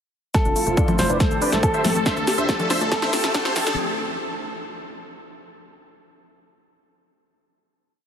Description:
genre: uplifting trance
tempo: 140 BPM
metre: 4/4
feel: straight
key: A minor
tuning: A4 = 441 Hz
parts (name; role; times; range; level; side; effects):
- big supersaw lead; melody; 0.3-3.8 s; F4 to E5; -25 LUFS; equal; sidechain pumping, low-pass filter, ping-pong delay
- dark grand piano; second line; 0.3-3.7 s; G4 to C5; -27 LUFS; equal; digital delay
- lush unison pad; sustained chords; 0.3-3.8 s; D3 to A4; -31 LUFS; right 1 dB; chorus, sidechain pumping
- analog pluck; arpeggios; 0.3-3.7 s; A3 to D4; -31 LUFS; left 3 dB; chorus, sidechain pumping, digital delay
- big-room dance drum kit; drums; 0.3-3.8 s; congas, hi-hat, shaker, snare drum; -26 LUFS; left 1 dB; overdrive
- electronic kick drum; drums; 0.3-3.4 s; none; -22 LUFS; equal; overdrive
- riser; sound effects; 1.7-3.8 s; none; -33 LUFS; left 1 dB; none
- tight sequencer bass; bass; 0.5-3.8 s; F1 to D2; -31 LUFS; equal; sidechain pumping
room: moderate huge ambient reverb, RT60 4.3 s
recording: heavily compressed radio sound, high-pass filter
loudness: -19 LUFS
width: side -8 dB against mid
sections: 0.3-3.8 build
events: build-up 0.3-3.8; drum fill 0.3-3.8; filter sweep on supersaw synth 0.3-3.8; filter sweep on synth pluck 0.3-3.8; filter sweep 0.3-3.8; riser 1.7-3.8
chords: 0.3 Fmaj7; 1.2 Am7; 2.1 Dm; 2.9 Am7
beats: | 0.34 0.77 1.20 1.63 | 2.06 2.49 2.92 3.35

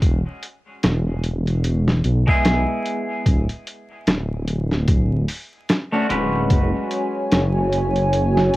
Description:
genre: trip hop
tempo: 74 BPM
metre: 4/4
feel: swing 58% on 16ths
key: unclear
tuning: A4 = 440 Hz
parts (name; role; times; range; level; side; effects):
- dark detuned saw bass; bass; 0.0-8.6 s; D1 to B1; -20 LUFS; equal; none
- boom bap sampler-style drum kit; drums; 0.0-8.6 s; hi-hat, kick drum, snare drum; -20 LUFS; equal; vintage 12-bit sampler grit, cassette tape
- clean electric guitar; accompaniment; 2.3-8.6 s; G#3 to B4; -24 LUFS; equal; harmonic tremolo, cassette tape, tape echo
- dark analog pad; sustained chords; 6.5-8.6 s; F#4 to G#5; -21 LUFS; right 1 dB; chorus, vintage 12-bit sampler grit, cassette tape
room: little or no reverb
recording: home recording on cassette, vinyl crackle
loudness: -18 LUFS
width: side -18 dB against mid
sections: 0.0-8.6 A section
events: none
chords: 0.0 E; 3.3 Bm/D; 6.5 F#sus2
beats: | 0.01 0.83 1.64 2.45 | 3.26 4.07 4.88 5.69 | 6.50 7.31 8.12

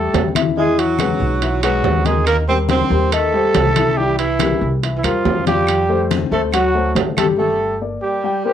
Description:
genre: Afro-Cuban jazz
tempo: 141 BPM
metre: 4/4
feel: straight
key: unclear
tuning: A4 = 440 Hz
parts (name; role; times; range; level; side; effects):
- growling trumpet; melody; 0.0-8.5 s; E4 to C5; -20 LUFS; right 1 dB; cassette tape
- bright tenor saxophone; second line; 0.0-8.5 s; E3 to C4; -23 LUFS; right 7 dB; cassette tape
- warm upright piano; accompaniment; 0.0-8.5 s; Eb3 to G5; -20 LUFS; left 6 dB; cassette tape
- upright bass; bass; 0.0-8.0 s; G1 to F2; -21 LUFS; right 1 dB; none
- congas; percussion; 0.1-7.4 s; none; -24 LUFS; left 8 dB; none
- timbales; percussion; 0.1-7.4 s; none; -22 LUFS; right 10 dB; none
- claves; percussion; 0.4-7.4 s; none; -32 LUFS; equal; none
room: wet studio ambience, RT60 0.5 s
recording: home recording on cassette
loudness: -14 LUFS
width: side -9 dB against mid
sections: 0.0-8.5 A section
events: break 7.4-8.5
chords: 0.0 A5; 0.6 Eadd9; 2.3 Eb6; 4.0 C7; 5.7 Fadd9; 6.5 D7; 7.4 Gm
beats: 0.14 | 0.57 0.99 1.42 1.85 | 2.27 2.70 3.12 3.55 | 3.98 4.40 4.83 5.25 | 5.68 6.11 6.53 6.96 | 7.39 7.82 8.24

